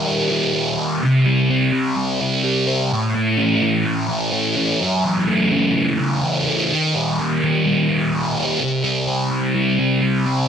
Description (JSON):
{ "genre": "rock", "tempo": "127 BPM", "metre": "4/4", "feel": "straight", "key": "unclear", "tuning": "A4 = 442 Hz", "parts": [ { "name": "thick fuzz guitar", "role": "solo", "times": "0.0-10.5 s", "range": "F#2 to C#4", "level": "-16 LUFS", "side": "equal", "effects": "distortion, phaser, analog delay" } ], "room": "light reverb", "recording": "none", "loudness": "-16 LUFS", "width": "side -7 dB against mid", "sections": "0.0-10.5 A section", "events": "none", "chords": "0.0 D#; 1.0 C5; 2.9 A; 4.8 F#m7; 6.7 D#; 8.6 C5" }